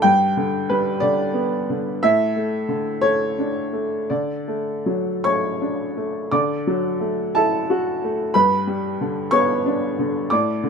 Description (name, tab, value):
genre	neoclassical minimalist piano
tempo	52-62 BPM (dotted quarters)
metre	6/8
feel	rubato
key	D major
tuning	A4 = 437 Hz
part	clear upright piano	solo	0.0-10.7 s	G2 to D6	-19 LUFS	equal	none
room	light reverb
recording	minimal, uncompressed stereo recording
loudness	-19 LUFS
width	side -6 dB against mid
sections	0.0-6.3 A section; 6.3-10.7 B section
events	none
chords	0.0 G; 2.0 Asus4; 4.1 D; 6.3 Dadd9; 8.3 G